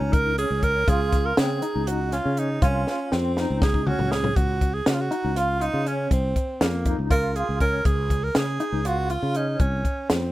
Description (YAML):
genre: progressive instrumental, band music in an uneven meter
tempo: 241 BPM (eighths)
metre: 7/8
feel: straight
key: Db major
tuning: A4 = 440 Hz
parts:
  - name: breathy tenor saxophone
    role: melody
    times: 0.0-10.3 s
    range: Bb3 to Bb4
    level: -26 LUFS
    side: right 3 dB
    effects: none
  - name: clean electric guitar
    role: arpeggios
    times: 0.0-9.6 s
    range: C4 to F4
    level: -30 LUFS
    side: left 1 dB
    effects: tremolo
  - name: fretless electric bass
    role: bass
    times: 0.0-10.3 s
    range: C2 to Db3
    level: -26 LUFS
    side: equal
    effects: none
  - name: compact cocktail drum kit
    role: drums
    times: 0.1-10.2 s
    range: hi-hat, kick drum, snare drum, toms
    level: -24 LUFS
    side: equal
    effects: none
room: little or no reverb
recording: rough home demo mix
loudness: -21 LUFS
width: side -16 dB against mid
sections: 0.0-4.4 A section; 4.4-10.3 B section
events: drum fill 2.9-4.4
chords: 0.0 Dbmaj7; 4.4 Db